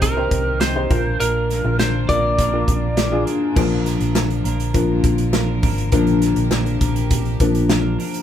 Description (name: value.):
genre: piano-driven pop.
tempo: 102 BPM.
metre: 4/4.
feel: straight.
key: unclear.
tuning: A4 = 440 Hz.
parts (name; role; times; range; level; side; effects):
lightly driven lead guitar; melody; 0.0-3.2 s; Bb4 to D5; -21 LUFS; equal; none.
warm upright piano; accompaniment; 0.0-8.2 s; Bb2 to C5; -21 LUFS; left 4 dB; none.
warm studio string section; sustained chords; 0.0-8.2 s; Bb2 to Bb4; -32 LUFS; right 1 dB; none.
twelve-string electric guitar; riff; 0.0-8.2 s; Bb2 to Bb4; -29 LUFS; right 5 dB; none.
hollow-body short-scale fingered electric bass; bass; 0.0-8.0 s; Ab1 to C2; -22 LUFS; equal; none.
modern studio drum kit; drums; 0.0-8.2 s; crash cymbal, hi-hat, kick drum, snare drum; -22 LUFS; equal; none.
group handclap; percussion; 4.2-7.8 s; none; -30 LUFS; left 3 dB; none.
room: moderate small room reverb, RT60 0.5 s.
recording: band playing live in one room.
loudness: -16 LUFS.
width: side -10 dB against mid.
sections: 0.0-3.6 A section; 3.6-8.2 B section.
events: upright piano solo 3.6-8.2.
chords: 0.0 Cm; 0.9 Bb.